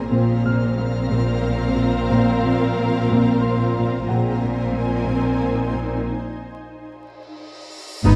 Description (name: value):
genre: cinematic, suspense film score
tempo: 91 BPM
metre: 3/4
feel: straight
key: unclear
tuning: A4 = 441 Hz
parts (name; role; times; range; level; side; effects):
- muted studio violin section; melody; 0.0-6.0 s; F5 to Ab5; -36 LUFS; equal; none
- muted studio violin section; second line; 0.0-6.0 s; Bb4; -32 LUFS; equal; none
- muted studio viola section; accompaniment; 0.0-8.2 s; B3 to D#4; -27 LUFS; equal; none
- shimmering ambient pad; sustained chords; 0.0-8.2 s; Eb4 to Bb5; -35 LUFS; equal; chorus, built-in reverb
- muted studio cello section; bass; 0.0-8.1 s; G#2 to Bb2; -26 LUFS; equal; none
- muted studio double bass section; bass; 0.0-8.1 s; G#1 to Bb1; -27 LUFS; equal; none
- dark grand piano; texture; 0.0-8.1 s; C5 to F6; -37 LUFS; equal; none
- warm French horn section; sustained chords; 0.1-4.3, 8.1-8.2 s; B3 to Ab4; -32 LUFS; equal; none
- muted studio cello section; riff; 0.1-8.2 s; G#2 to Bb3; -26 LUFS; equal; none
- muted studio violin section; texture; 0.1-3.7, 8.1-8.2 s; G#5 to Bb6; -43 LUFS; equal; none
- cymbal swell and impact; sound effects; 7.6-8.2 s; none; -28 LUFS; equal; none
- warm trombone section; sustained chords; 8.1-8.2 s; none; barely audible; none; none
room: moderate recital hall reverb, RT60 1.5 s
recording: dark, warm production, vinyl crackle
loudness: -20 LUFS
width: mono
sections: 0.0-8.0 A section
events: break 6.1-8.0; cymbal swell 7.6-8.0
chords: 0.1 Bbsus2; 4.1 Abadd9/Bb